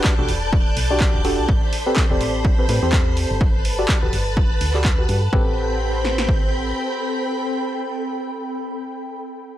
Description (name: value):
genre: piano house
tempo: 125 BPM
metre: 4/4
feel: swing 57% on 16ths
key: A dorian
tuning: A4 = 440 Hz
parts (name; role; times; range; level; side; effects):
- string machine, violins; sustained chords; 0.0-8.8 s; C4 to G6; -28 LUFS; right 1 dB; ensemble chorus, sidechain pumping
- percussive organ stab; riff; 0.0-8.8 s; C4 to D5; -25 LUFS; equal; chorus, sidechain pumping, tape echo
- punchy analog drum machine; drums; 0.0-6.4 s; kick drum, snare drum; -19 LUFS; equal; overdrive
- punchy analog drum machine; drums; 0.0-5.2 s; handclaps, hi-hat; -26 LUFS; right 1 dB; overdrive
- ethereal airy pad; texture; 0.0-9.0 s; C4 to B5; -28 LUFS; left 1 dB; ensemble chorus, built-in reverb, sidechain pumping
- solid FM bass; bass; 0.2-6.7 s; D1 to A2; -24 LUFS; equal; sidechain pumping
room: little or no reverb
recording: dry, gritty hardware recording, cassette tape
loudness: -18 LUFS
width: side -12 dB against mid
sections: 0.0-5.3 A section; 5.3-9.2 B section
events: filter sweep on synth stab 0.0-5.3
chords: 0.0 Em11; 1.5 Am9; 3.4 Gmaj9; 5.3 Am9